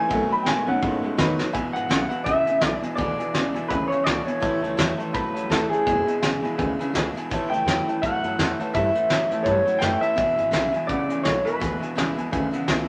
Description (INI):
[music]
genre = rockabilly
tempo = 167 BPM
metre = 4/4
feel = swing 58% on 8ths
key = E mixolydian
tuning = A4 = 440 Hz
[part]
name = clear upright piano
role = accompaniment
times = 0.0-12.8 s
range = D#3 to B5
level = -33 LUFS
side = equal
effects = none
[part]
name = picked steel-string acoustic guitar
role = accompaniment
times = 0.0-12.9 s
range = E2 to F#4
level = -35 LUFS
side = equal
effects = none
[part]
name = electric guitar through a small old amp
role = riff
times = 0.0-12.9 s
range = E2 to G#3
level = -31 LUFS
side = equal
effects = none
[part]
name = upright bass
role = bass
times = 0.1-12.8 s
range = E1 to B2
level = -34 LUFS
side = equal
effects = none
[part]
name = soft brush drum kit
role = drums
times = 0.1-12.8 s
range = hi-hat, kick drum, snare drum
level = -29 LUFS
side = equal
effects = none
[part]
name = electric guitar through a small old amp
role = melody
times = 1.7-12.8 s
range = G#4 to G5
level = -26 LUFS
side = equal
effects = spring reverb
[sound]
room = moderate studio reverb, RT60 0.7 s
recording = none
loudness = -23 LUFS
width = mono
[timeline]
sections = 0.0-1.5 A section; 1.5-12.9 B section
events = upright piano solo 0.0-1.5; drum fill 1.4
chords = 0.1 B7; 1.5 E7; 4.4 A7; 5.9 E7; 7.3 A7; 10.2 E7